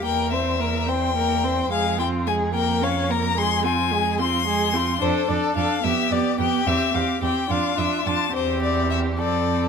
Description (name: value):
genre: quick classical-period movement for string quartet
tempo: 72 BPM (dotted quarters)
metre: 6/8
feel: rubato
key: F minor, C major from 5.0 s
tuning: A4 = 441 Hz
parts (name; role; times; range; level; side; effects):
- rich violin; melody; 0.0-9.7 s; C5 to C6; -24 LUFS; left 10 dB; none
- warm violin; second line; 0.0-9.7 s; F4 to Db5; -27 LUFS; left 2 dB; none
- rich viola; accompaniment; 0.0-9.7 s; Ab3 to D4; -25 LUFS; right 4 dB; none
- rich cello; bass; 0.0-9.7 s; E2 to F2; -27 LUFS; right 4 dB; none
room: moderate large studio reverb, RT60 1.3 s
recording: none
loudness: -20 LUFS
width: side -6 dB against mid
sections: 0.0-9.7 A section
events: none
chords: 0.0 C7/E; 1.7 Fm; 2.5 Bbm/F; 3.4 Fm; 5.0 Dm; 5.8 G7/F; 6.7 C/E; 7.5 Dm/F; 8.3 C/E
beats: | 0.04 0.88 | 1.71 2.54 | 3.37 4.19 | 5.01 5.84 | 6.67 7.50 | 8.35 9.19